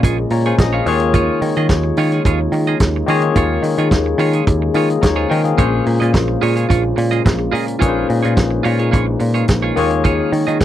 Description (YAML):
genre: disco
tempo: 108 BPM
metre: 4/4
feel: straight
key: Bb minor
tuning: A4 = 438 Hz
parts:
  - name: barky tine electric piano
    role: accompaniment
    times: 0.0-10.6 s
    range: Bb2 to Bb5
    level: -19 LUFS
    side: left 6 dB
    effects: overdrive
  - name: clean electric guitar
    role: accompaniment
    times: 0.0-10.6 s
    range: F4 to Eb5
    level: -22 LUFS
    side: right 7 dB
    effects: wide subtle chorus
  - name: mellow French horn section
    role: sustained chords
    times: 0.0-10.6 s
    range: Db3 to Ab4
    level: -23 LUFS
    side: right 1 dB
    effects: none
  - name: picked electric bass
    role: bass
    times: 0.0-10.6 s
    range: Bb1 to Eb3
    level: -18 LUFS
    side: right 1 dB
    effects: none
  - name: warm soul drum kit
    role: drums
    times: 0.0-10.6 s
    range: hi-hat, kick drum, snare drum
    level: -16 LUFS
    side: right 1 dB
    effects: none
room: little or no reverb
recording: dry, close 1970s-style studio recording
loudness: -13 LUFS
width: side -12 dB against mid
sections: 0.0-10.6 A section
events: tine electric piano fill 0.3-1.1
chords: 0.0 Bbm7; 0.9 Eb9sus4; 5.6 Bbm7; 9.8 Eb9sus4